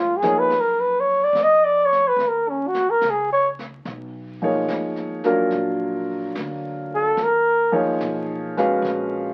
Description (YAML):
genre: jazz ballad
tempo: 72 BPM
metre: 4/4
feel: swing 68% on 8ths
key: Eb minor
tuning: A4 = 440 Hz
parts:
  - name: mellow flugelhorn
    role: melody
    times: 0.0-7.8 s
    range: Db4 to Eb5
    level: -20 LUFS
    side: equal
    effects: none
  - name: warm grand piano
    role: accompaniment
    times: 0.0-9.3 s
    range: F3 to F5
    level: -24 LUFS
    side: equal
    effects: none
  - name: upright bass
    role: bass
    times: 0.0-9.3 s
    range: Ab1 to Ab2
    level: -42 LUFS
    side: equal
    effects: none
  - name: jazz brush drum kit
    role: drums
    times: 0.2-9.3 s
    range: brushed snare drum, crash cymbal, hi-hat, kick drum, snare drum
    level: -39 LUFS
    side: equal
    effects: none
room: moderate small room reverb, RT60 0.6 s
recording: very old 78 rpm record, vinyl crackle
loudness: -21 LUFS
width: mono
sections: 0.0-9.3 A section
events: drum fill 0.0-0.5; flugelhorn solo 0.0-9.3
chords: 0.0 Dbadd9; 0.5 Gb5; 3.9 Fm7b5; 5.5 Bb; 7.2 Ebm7